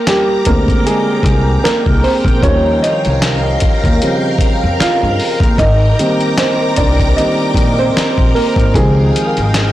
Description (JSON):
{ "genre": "R&B, neo-soul", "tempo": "76 BPM", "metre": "4/4", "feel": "swing 57% on 16ths", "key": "unclear", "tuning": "A4 = 440 Hz", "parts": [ { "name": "dark upright piano", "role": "accompaniment", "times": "0.0-9.7 s", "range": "Db3 to F5", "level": "-14 LUFS", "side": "right 1 dB", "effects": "plate reverb" }, { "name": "string machine, violins", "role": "sustained chords", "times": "0.0-9.7 s", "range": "Bb4 to Eb6", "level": "-20 LUFS", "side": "left 1 dB", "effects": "ensemble chorus" }, { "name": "dusty soul sampler-style drum kit", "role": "drums", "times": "0.1-9.7 s", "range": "finger snaps, hi-hat, kick drum, snare drum", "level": "-15 LUFS", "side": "equal", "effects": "none" }, { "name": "upright bass", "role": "bass", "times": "0.5-9.7 s", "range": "Ab1 to G2", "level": "-15 LUFS", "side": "equal", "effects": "tube saturation" } ], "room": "light reverb", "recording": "blown-out, overdriven recording, overdrive", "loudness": "-10 LUFS", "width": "side -14 dB against mid", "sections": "0.0-9.7 A section", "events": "upright piano solo 0.0-9.7", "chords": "0.0 Bb13; 2.4 Eb13; 5.6 Abmaj9#11; 8.7 Dbmaj9#11" }